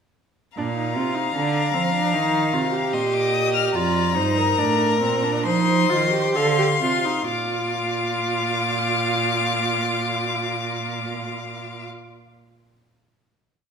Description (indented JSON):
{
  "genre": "classical, baroque-style fugue for string quartet",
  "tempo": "62-78 BPM",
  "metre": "4/4",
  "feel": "straight",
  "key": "Bb major",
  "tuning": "A4 = 441 Hz",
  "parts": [
    { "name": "rich violin", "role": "melody", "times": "0.6-11.9 s", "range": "Bb5 to F6", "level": "-25 LUFS", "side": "left 8 dB", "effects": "none" },
    { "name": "rich violin", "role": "second line", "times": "0.6-11.9 s", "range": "Bb4 to F5", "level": "-26 LUFS", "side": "left 4 dB", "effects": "none" },
    { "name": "rich viola", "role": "accompaniment", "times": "0.6-11.9 s", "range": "C4 to A4", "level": "-25 LUFS", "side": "right 2 dB", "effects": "none" },
    { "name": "rich cello", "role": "bass", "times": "0.6-11.9 s", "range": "F2 to F3", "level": "-26 LUFS", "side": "right 5 dB", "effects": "none" }
  ],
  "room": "wet recital hall reverb, RT60 1.6 s",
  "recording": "minimal, uncompressed stereo recording",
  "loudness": "-19 LUFS",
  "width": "side -6 dB against mid",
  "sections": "0.6-7.3 exposition; 7.3-11.1 final chord",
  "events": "slowing down 0.6-9.2",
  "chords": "0.6 Bb; 2.1 Eb; 3.7 Bb/F; 5.5 F7; 7.3 Bb"
}